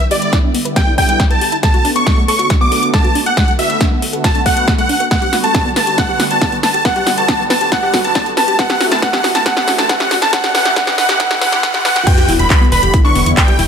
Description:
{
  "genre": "uplifting trance",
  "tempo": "138 BPM",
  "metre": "4/4",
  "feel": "straight",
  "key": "unclear",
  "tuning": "A4 = 441 Hz",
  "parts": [
    { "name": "dense compressed supersaw", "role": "melody", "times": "0.0-13.6 s", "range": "D5 to D6", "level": "-16 LUFS", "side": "equal", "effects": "sidechain pumping, ping-pong delay" },
    { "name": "warm grand piano", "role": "second line", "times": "0.0-13.6 s", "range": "D5 to D6", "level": "-22 LUFS", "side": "right 1 dB", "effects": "sidechain pumping, ping-pong delay" },
    { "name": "lush unison pad", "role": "sustained chords", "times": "0.0-13.5 s", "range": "D3 to F#4", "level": "-22 LUFS", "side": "right 1 dB", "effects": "chorus, phaser, sidechain pumping" },
    { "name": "wide unison pluck", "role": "arpeggios", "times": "0.0-13.6 s", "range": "A3 to B4", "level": "-22 LUFS", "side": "left 2 dB", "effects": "sidechain pumping, ping-pong delay" },
    { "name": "big-room dance drum kit", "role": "drums", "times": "0.0-13.7 s", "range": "crash cymbal, handclaps, hi-hat, snare drum", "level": "-18 LUFS", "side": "equal", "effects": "small room ambience" },
    { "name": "solid FM bass", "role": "bass", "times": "0.1-13.7 s", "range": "E1 to A2", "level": "-23 LUFS", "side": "equal", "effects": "none" },
    { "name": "electronic kick drum", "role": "drums", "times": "0.3-13.5 s", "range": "none", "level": "-15 LUFS", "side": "equal", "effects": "small room ambience" },
    { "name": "riser and sub drop", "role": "sound effects", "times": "6.8-13.7 s", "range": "none", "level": "-25 LUFS", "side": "right 1 dB", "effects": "none" }
  ],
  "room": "moderate lush hall reverb, RT60 2.1 s",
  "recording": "high-pass filter",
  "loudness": "-11 LUFS",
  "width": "side -7 dB against mid",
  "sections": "0.0-12.1 A section; 12.1-13.7 B section",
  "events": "build-up 0.0-12.1; drum fill 0.0-12.1; filter sweep on synth pluck 0.0-12.1; filter sweep 0.0-12.1; drop 12.1-13.7; impact 12.1-13.7",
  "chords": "0.0 Em7; 1.6 Bm7; 5.1 Gmaj7; 8.6 Asus4; 12.1 Em7"
}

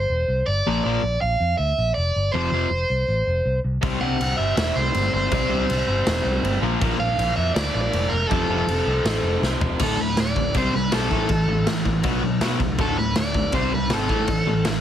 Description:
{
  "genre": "punk rock",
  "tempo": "161 BPM",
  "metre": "4/4",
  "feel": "straight",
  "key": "unclear",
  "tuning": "A4 = 435 Hz",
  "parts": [
    { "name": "overdriven electric guitar", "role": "melody", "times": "0.0-14.6 s", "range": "A4 to F#5", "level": "-24 LUFS", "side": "right 1 dB", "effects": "none" },
    { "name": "picked electric bass", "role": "bass", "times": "0.0-14.8 s", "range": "D1 to B2", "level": "-25 LUFS", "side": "equal", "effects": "none" },
    { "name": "distorted electric guitar", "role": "riff", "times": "0.7-14.8 s", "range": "D2 to C4", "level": "-27 LUFS", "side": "right 10 dB", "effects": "distortion" },
    { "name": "overdriven electric guitar", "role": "riff", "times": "0.7-14.8 s", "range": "D2 to C4", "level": "-26 LUFS", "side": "left 10 dB", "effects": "none" },
    { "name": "tight distorted guitar", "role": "riff", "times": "3.8-9.8 s", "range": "F2 to C4", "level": "-28 LUFS", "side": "equal", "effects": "distortion" },
    { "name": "raw garage drum kit", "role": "drums", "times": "3.8-14.7 s", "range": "crash cymbal, kick drum, snare drum, toms", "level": "-25 LUFS", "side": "equal", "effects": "none" }
  ],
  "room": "little or no reverb",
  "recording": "heavily compressed radio sound",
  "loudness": "-19 LUFS",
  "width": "side -10 dB against mid",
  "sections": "0.0-9.8 A section; 9.8-14.8 B section",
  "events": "half time 0.0-9.8; drum fill 9.4-9.8; overdriven electric guitar solo 9.8-14.8",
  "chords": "0.0 C; 0.7 Bb; 2.3 F5; 3.8 C5; 6.6 Bb; 8.3 F; 9.8 D5; 10.5 C5; 11.1 A5; 12.0 B5; 12.8 D5; 13.5 C5; 14.1 A5"
}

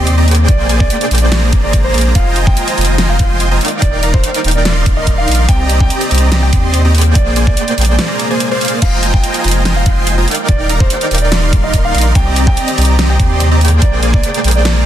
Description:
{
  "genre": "future bass",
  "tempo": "144 BPM",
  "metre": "4/4",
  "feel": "half-time",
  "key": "F dorian",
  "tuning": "A4 = 440 Hz",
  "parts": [
    { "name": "dark concert grand piano", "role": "melody", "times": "0.0-14.8 s", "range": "C5 to G5", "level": "-21 LUFS", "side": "right 2 dB", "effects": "sidechain pumping, ping-pong delay" },
    { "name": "airy breathy pad", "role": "sustained chords", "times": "0.0-14.9 s", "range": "C3 to Bb5", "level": "-25 LUFS", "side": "right 2 dB", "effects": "chorus, sidechain pumping" },
    { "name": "dense compressed supersaw", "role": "riff", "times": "0.0-14.9 s", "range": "Bb3 to C6", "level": "-16 LUFS", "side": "right 1 dB", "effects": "sidechain pumping" },
    { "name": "saturated sub bass", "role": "bass", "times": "0.0-14.9 s", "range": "Eb1 to Eb2", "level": "-13 LUFS", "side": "equal", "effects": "sidechain pumping" },
    { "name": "dubstep drum kit", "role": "drums", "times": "0.1-14.7 s", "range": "crash cymbal, hi-hat, snare drum", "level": "-19 LUFS", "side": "equal", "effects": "none" },
    { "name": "electronic kick drum", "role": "drums", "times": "0.5-14.2 s", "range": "none", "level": "-12 LUFS", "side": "equal", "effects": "none" }
  ],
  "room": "little or no reverb",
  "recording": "dense, heavily limited modern master, lossy compression artefacts",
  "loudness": "-10 LUFS",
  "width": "side -11 dB against mid",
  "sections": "0.0-14.9 A section",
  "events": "break 8.0-8.8",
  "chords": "0.5 Bb13; 2.2 Fm11; 3.8 Ebmaj7; 5.5 Cm9; 7.2 Bb13; 8.8 Fm11; 10.5 Ebmaj7; 12.2 Cm9; 13.8 Bb13"
}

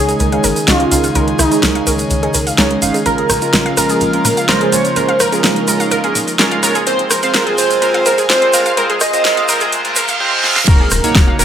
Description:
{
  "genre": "progressive house",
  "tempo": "126 BPM",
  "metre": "4/4",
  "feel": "straight",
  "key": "Bb minor",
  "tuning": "A4 = 440 Hz",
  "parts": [
    { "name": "plucky unison lead", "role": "melody", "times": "0.0-11.4 s", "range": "Eb4 to Eb5", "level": "-17 LUFS", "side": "right 1 dB", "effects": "wide subtle chorus, sidechain pumping, digital delay" },
    { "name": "airy breathy pad", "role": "sustained chords", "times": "0.0-11.4 s", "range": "C3 to Bb4", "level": "-22 LUFS", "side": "equal", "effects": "chorus, sidechain pumping" },
    { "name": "chorused polysynth", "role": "stabs", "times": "0.0-11.4 s", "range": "Ab3 to F5", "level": "-18 LUFS", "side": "right 2 dB", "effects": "sidechain pumping, digital delay" },
    { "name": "tight sequencer bass", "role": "bass", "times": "0.0-11.4 s", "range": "Eb1 to Bb2", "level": "-22 LUFS", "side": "equal", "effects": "sidechain pumping" },
    { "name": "wide unison pluck", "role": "arpeggios", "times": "0.1-11.4 s", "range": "Ab4 to F5", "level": "-20 LUFS", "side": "equal", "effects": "sidechain pumping, digital delay" },
    { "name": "deep house drum kit", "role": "drums", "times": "0.1-11.4 s", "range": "crash cymbal, hi-hat, rim click, snare drum", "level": "-17 LUFS", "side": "equal", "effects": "none" },
    { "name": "tube shaker", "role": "percussion", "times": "0.1-11.4 s", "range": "none", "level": "-21 LUFS", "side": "right 2 dB", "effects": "none" },
    { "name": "riser, reverse cymbal and impact", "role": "sound effects", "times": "6.9-11.4 s", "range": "none", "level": "-23 LUFS", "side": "right 2 dB", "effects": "none" },
    { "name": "electronic kick drum", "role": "drums", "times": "10.7-11.3 s", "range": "none", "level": "-10 LUFS", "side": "equal", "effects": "none" }
  ],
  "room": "wet digital room reverb, RT60 1.2 s",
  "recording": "high-pass filter",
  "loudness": "-11 LUFS",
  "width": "side -9 dB against mid",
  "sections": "0.0-10.7 A section",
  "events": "build-up 0.0-10.7; filter sweep on synth pluck 0.0-10.7; filter sweep on analog polysynth 0.0-10.7; filter sweep 0.0-10.7; reverse cymbal 9.7-10.7; drum fill 10.4; impact 10.7-11.4",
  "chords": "0.0 Dbsus2; 3.1 Bbm7; 6.9 Fm; 10.7 Ebm7"
}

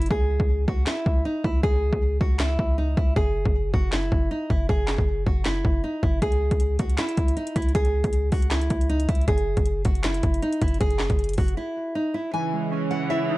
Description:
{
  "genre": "hip hop, trap",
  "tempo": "157 BPM",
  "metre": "4/4",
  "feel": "half-time",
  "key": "C# minor",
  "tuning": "A4 = 440 Hz",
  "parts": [
    { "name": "nylon-string guitar", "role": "melody", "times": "0.0-13.4 s", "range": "D#4 to G#5", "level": "-27 LUFS", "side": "right 1 dB", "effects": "digital delay" },
    { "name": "warm 808-style bass", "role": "bass", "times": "0.0-11.6 s", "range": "F#1 to C#2", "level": "-24 LUFS", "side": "equal", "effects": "none" },
    { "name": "trap drum kit", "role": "drums", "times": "0.0-11.6 s", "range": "handclaps, hi-hat, kick drum, snare drum", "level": "-24 LUFS", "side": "equal", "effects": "vintage 12-bit sampler grit" },
    { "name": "warbly lo-fi synth keys", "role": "accompaniment", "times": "12.3-13.4 s", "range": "E3 to E4", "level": "-25 LUFS", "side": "right 2 dB", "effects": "chorus" },
    { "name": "rich symphonic string section", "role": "sustained chords", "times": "12.3-13.4 s", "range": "C#3 to C#4", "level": "-31 LUFS", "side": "right 2 dB", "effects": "none" }
  ],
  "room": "little or no reverb",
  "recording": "dark, warm production",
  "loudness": "-21 LUFS",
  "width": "side -18 dB against mid",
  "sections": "0.0-12.3 A section; 12.3-13.4 B section",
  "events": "hi-hats muted 0.1-6.2; break 11.6-12.3",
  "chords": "0.1 C#m; 3.2 Eadd9/F#; 6.2 C#m; 9.3 Eadd9/F#; 12.3 C#m"
}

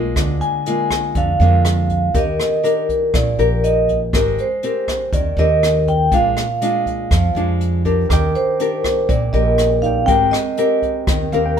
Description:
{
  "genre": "bossa nova",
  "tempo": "121 BPM",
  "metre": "4/4",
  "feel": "straight",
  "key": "Eb major",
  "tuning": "A4 = 439 Hz",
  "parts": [
    { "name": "nylon-string guitar", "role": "accompaniment", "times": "0.0-11.6 s", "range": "Bb2 to Bb4", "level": "-20 LUFS", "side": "left 3 dB", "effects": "none" },
    { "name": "upright bass", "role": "bass", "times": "0.0-11.6 s", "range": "Ab1 to F2", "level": "-18 LUFS", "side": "right 1 dB", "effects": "none" },
    { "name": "jazz brush drum kit", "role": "drums", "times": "0.2-11.6 s", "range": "hi-hat, kick drum, rim click", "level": "-22 LUFS", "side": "equal", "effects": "none" },
    { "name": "vibraphone with soft mallets", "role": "melody", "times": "0.4-11.0 s", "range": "C5 to Ab5", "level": "-19 LUFS", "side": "right 2 dB", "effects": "none" },
    { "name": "barky tine electric piano", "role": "accompaniment", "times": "8.1-11.6 s", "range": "C4 to D6", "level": "-25 LUFS", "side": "right 6 dB", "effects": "overdrive" }
  ],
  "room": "light reverb",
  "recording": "band playing live in one room",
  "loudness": "-14 LUFS",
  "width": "side -8 dB against mid",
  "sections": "0.0-11.6 A section",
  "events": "tine electric piano fill 11.1-11.6",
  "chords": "0.2 Bb7/D; 2.1 Ebmaj7; 4.1 Abmaj9; 6.1 Bb7; 8.1 Ebmaj7; 10.1 Abmaj9"
}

